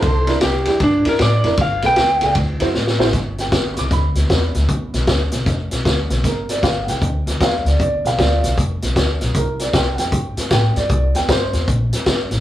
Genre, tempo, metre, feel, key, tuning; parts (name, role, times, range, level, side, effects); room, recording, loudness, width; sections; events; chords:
electric blues shuffle; 154 BPM; 4/4; swing 64% on 8ths; G mixolydian; A4 = 440 Hz
lightly driven lead guitar; melody; 0.0-2.4 s; D4 to G5; -17 LUFS; equal
upright bass; bass; 0.0-12.4 s; F1 to A2; -20 LUFS; equal
vintage drum kit; drums; 0.0-12.4 s; hi-hat, kick drum, ride cymbal, snare drum; -19 LUFS; left 1 dB
dark upright piano; accompaniment; 0.3-11.7 s; D4 to D6; -22 LUFS; right 2 dB
moderate studio reverb, RT60 0.5 s; rough rehearsal-room recording, warm saturation; -15 LUFS; side -13 dB against mid
0.0-3.1 A section; 3.1-12.4 B section
drum fill 2.7-3.1
0.0 C7; 1.6 G7; 2.4 D7; 3.1 G7; 9.4 C7